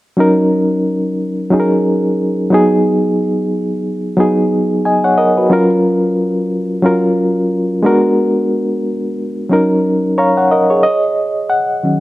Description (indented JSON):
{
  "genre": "soul",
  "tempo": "90 BPM",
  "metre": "4/4",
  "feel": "swing 58% on 16ths",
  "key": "Eb minor",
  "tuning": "A4 = 440 Hz",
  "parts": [
    { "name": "barky reed electric piano", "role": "solo", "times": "0.2-12.0 s", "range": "Eb3 to Bb5", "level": "-12 LUFS", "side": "equal", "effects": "fast tremolo" }
  ],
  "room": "light reverb, digital ambience",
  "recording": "none",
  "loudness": "-12 LUFS",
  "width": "side -17 dB against mid",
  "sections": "0.2-10.8 A section; 10.8-12.0 B section",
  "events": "reed electric piano solo 10.8-12.0",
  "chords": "0.2 Ebm7; 2.5 Abm7; 5.5 Gbmaj7; 7.8 Bb7b9b13; 9.5 Ebm7"
}